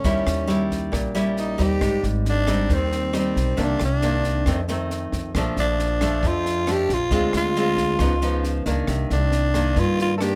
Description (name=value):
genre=bossa nova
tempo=136 BPM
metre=4/4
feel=straight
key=unclear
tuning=A4 = 440 Hz
part: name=growling tenor saxophone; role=melody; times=0.0-10.4 s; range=C4 to A4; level=-26 LUFS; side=equal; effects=none
part: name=nylon-string guitar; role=accompaniment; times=0.0-10.4 s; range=F2 to F4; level=-27 LUFS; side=equal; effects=none
part: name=upright bass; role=bass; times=0.0-10.4 s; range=Ab1 to G2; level=-27 LUFS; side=equal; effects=none
part: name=compact cocktail drum kit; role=drums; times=0.0-10.3 s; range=kick drum, rim click, snare drum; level=-32 LUFS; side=equal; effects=none
room=light reverb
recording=none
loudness=-22 LUFS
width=mono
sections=0.0-10.4 A section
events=none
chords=0.0 Eb7b9; 1.8 Abmaj7; 3.6 Cm9; 4.5 F7; 5.3 Bbmaj7; 7.1 Dm7b5; 8.0 C#9; 8.9 Cm9